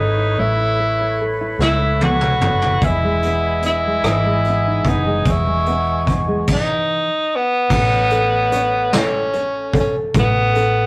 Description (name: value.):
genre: six-eight pop ballad.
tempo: 49 BPM (dotted quarters).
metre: 6/8.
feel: straight.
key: unclear.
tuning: A4 = 440 Hz.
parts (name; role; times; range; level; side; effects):
clear tenor saxophone; melody; 0.0-10.9 s; B3 to F#4; -21 LUFS; equal; none.
nylon-string guitar; accompaniment; 0.0-10.9 s; E3 to C#5; -26 LUFS; equal; none.
warm woodwind section; sustained chords; 0.0-6.5 s; G#4 to C#6; -27 LUFS; equal; none.
vintage muted fingered electric bass; bass; 0.0-10.9 s; E1 to C#2; -24 LUFS; equal; none.
vintage brush drum kit; drums; 1.6-10.7 s; crash cymbal, hi-hat, kick drum, rim click, snare drum, toms; -23 LUFS; equal; none.
room: moderate small room reverb, RT60 0.5 s.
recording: rough rehearsal-room recording.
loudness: -18 LUFS.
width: mono.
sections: 0.0-7.7 A section; 7.7-10.9 B section.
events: drum fill 1.6-2.8.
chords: 0.0 Aadd9; 2.8 Emaj7; 7.7 Aadd9.